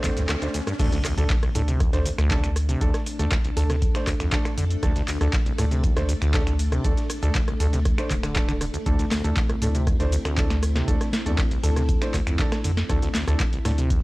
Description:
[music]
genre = acid house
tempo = 119 BPM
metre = 4/4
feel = straight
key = unclear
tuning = A4 = 440 Hz
[part]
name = acid bass, saw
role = riff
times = 0.0-14.0 s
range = C2 to D3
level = -28 LUFS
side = equal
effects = none
[part]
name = clear grand piano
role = stabs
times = 0.0-13.8 s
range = A3 to C5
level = -32 LUFS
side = right 1 dB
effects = analog delay
[part]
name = warm sub bass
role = bass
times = 0.0-14.0 s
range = D1 to F2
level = -24 LUFS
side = equal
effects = sidechain pumping
[part]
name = booming analog drum machine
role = drums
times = 0.0-14.0 s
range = crash cymbal, finger snaps, handclaps, hi-hat, rim click, shaker, snare drum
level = -30 LUFS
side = equal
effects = studio ambience
[part]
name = dusty soul sampler-style drum kit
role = drums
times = 0.0-14.0 s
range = hi-hat, snare drum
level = -42 LUFS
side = equal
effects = none
[part]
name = electronic kick drum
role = drums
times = 0.0-14.0 s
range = none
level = -24 LUFS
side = equal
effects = studio ambience
[part]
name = riser and impact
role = sound effects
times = 0.0-2.8 s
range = none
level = -32 LUFS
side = equal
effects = none
[part]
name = string machine, full ensemble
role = sustained chords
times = 0.8-14.0 s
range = A3 to A4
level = -34 LUFS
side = left 1 dB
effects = ensemble chorus, sidechain pumping
[part]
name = thumb-piano-like synth pluck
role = melody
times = 3.6-4.3, 11.6-12.3 s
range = A4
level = -37 LUFS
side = left 1 dB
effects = chorus, cassette tape, tape echo
[sound]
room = little or no reverb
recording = dry, gritty hardware recording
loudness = -21 LUFS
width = side -20 dB against mid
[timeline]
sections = 0.8-14.0 A section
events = riser 0.0-0.8; band accent 0.3; drop 0.8-14.0; impact 0.8-2.8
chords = 0.0 D5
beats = 0.29 | 0.80 1.30 1.80 2.31 | 2.81 3.32 3.82 4.32 | 4.83 5.33 5.84 6.34 | 6.84 7.35 7.85 8.36 | 8.86 9.37 9.87 10.38 | 10.88 11.38 11.89 12.39 | 12.90 13.40 13.90

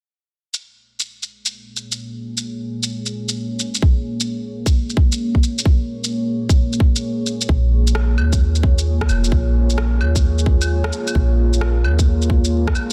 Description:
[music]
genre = future garage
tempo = 131 BPM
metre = 4/4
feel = swing 66% on 16ths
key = Bb minor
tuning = A4 = 441 Hz
[part]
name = deep dark ambient pad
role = sustained chords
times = 1.9-12.9 s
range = Bb2 to Db5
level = -27 LUFS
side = equal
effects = chorus, built-in reverb, vintage 12-bit sampler grit, sidechain pumping
[part]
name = electronic shaker, rim click and claves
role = drums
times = 0.5-12.9 s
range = none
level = -27 LUFS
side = equal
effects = none
[part]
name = electronic kick drum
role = drums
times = 3.8-12.7 s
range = none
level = -18 LUFS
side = equal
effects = none
[part]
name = soft 808-style bass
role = bass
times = 7.5-12.7 s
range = F1 to Eb2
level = -19 LUFS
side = equal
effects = tube saturation, sidechain pumping
[sound]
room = light reverb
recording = dense, heavily limited modern master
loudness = -19 LUFS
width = mono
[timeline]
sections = 0.2-7.5 A section; 7.5-12.9 B section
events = filter sweep on ambient pad 0.2-7.5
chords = 0.2 Bbm7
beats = | 0.16 0.62 1.08 1.53 | 1.99 2.45 2.91 3.37 | 3.83 4.28 4.74 5.20 | 5.66 6.12 6.57 7.03 | 7.49 7.95 8.40 8.86 | 9.32 9.78 10.24 10.70 | 11.15 11.61 12.07 12.53

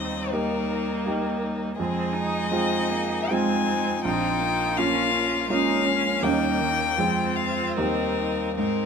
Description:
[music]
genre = classical, slow romantic movement for piano quintet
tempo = 73-85 BPM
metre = 3/4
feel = rubato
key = unclear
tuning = A4 = 440 Hz
[part]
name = rich violin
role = melody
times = 0.0-8.9 s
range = Bb4 to Ab5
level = -27 LUFS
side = left 8 dB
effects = none
[part]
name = clear cello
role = second line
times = 0.0-8.9 s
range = Eb3 to C4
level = -32 LUFS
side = right 4 dB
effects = none
[part]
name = rich violin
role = second line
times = 0.0-8.9 s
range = Db4 to Ab4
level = -32 LUFS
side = left 4 dB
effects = none
[part]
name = rich viola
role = accompaniment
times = 0.0-8.9 s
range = Bb3 to Eb4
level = -31 LUFS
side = right 3 dB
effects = none
[part]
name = warm concert grand piano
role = accompaniment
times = 0.0-8.9 s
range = Bb1 to Ab4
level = -26 LUFS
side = right 2 dB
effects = none
[sound]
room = light reverb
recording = minimal, uncompressed stereo recording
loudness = -22 LUFS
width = side -6 dB against mid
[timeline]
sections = 0.0-8.9 A section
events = none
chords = 0.0 Eb; 1.8 Fm7; 4.0 Bbm; 6.2 Eb7; 7.0 Fm; 7.8 Eb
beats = 0.33 1.06 | 1.79 2.51 3.30 | 4.04 4.78 5.50 | 6.22 6.98 7.76 | 8.57

